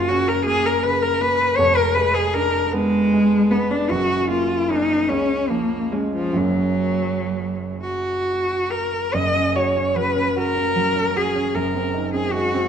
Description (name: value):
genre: classical, romantic duo for cello and grand piano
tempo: 40-54 BPM (dotted quarters)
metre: 6/8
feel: rubato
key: F# major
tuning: A4 = 440 Hz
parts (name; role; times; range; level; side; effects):
- rich cello; melody; 0.0-12.7 s; E#3 to D#5; -19 LUFS; left 1 dB; none
- warm grand piano; accompaniment; 0.0-12.7 s; F1 to F#4; -24 LUFS; right 3 dB; none
room: wet recital hall reverb, RT60 1.8 s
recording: dark, warm production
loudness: -18 LUFS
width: side -8 dB against mid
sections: 0.0-9.1 A section; 9.1-12.7 B section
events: none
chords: 0.0 F#; 1.6 Fdim7; 3.9 F#; 5.1 C#; 6.4 F#; 11.6 G#7/F#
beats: 0.47 | 1.59 2.73 | 3.91 5.09 | 6.38 7.83 | 9.14 10.36 | 11.55